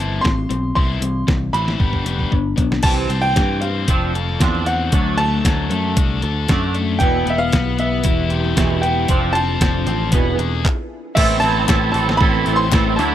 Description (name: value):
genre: indie rock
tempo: 115 BPM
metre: 4/4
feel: straight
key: unclear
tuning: A4 = 437 Hz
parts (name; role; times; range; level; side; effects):
- clear upright piano; melody; 0.0-13.1 s; E5 to C6; -22 LUFS; right 1 dB; slapback echo
- biting overdriven guitar; riff; 0.0-13.1 s; E3 to A4; -22 LUFS; left 7 dB; none
- picked electric bass; bass; 0.0-13.1 s; E1 to G2; -21 LUFS; equal; none
- detuned 8-bit digital drum machine; drums; 0.0-13.1 s; crash cymbal, handclaps, hi-hat, kick drum, snare drum; -19 LUFS; equal; none
- twangy electric guitar; riff; 2.8-13.1 s; E2 to A4; -23 LUFS; right 8 dB; ensemble chorus, slapback echo
- soft string machine; sustained chords; 7.4-13.1 s; E3 to A5; -28 LUFS; right 1 dB; ensemble chorus
- group handclap; percussion; 11.7-12.8 s; none; -28 LUFS; left 10 dB; none
room: digital ambience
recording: dry, close 1970s-style studio recording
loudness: -15 LUFS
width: side -11 dB against mid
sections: 0.0-2.8 A section; 2.8-11.2 B section; 11.2-13.1 C section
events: drum fill 1.8-2.8; stop 10.6-11.2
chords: 0.0 Amadd9; 0.8 C; 1.8 G; 2.8 C; 3.9 F6; 4.9 D; 7.0 Em; 9.1 F6; 10.1 E7; 11.2 Am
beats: 0.24 | 0.76 1.28 1.80 2.32 | 2.85 3.37 3.89 4.41 | 4.93 5.45 5.97 6.49 | 7.01 7.53 8.05 8.57 | 9.09 9.61 10.13 10.65 | 11.17 11.69 12.21 12.72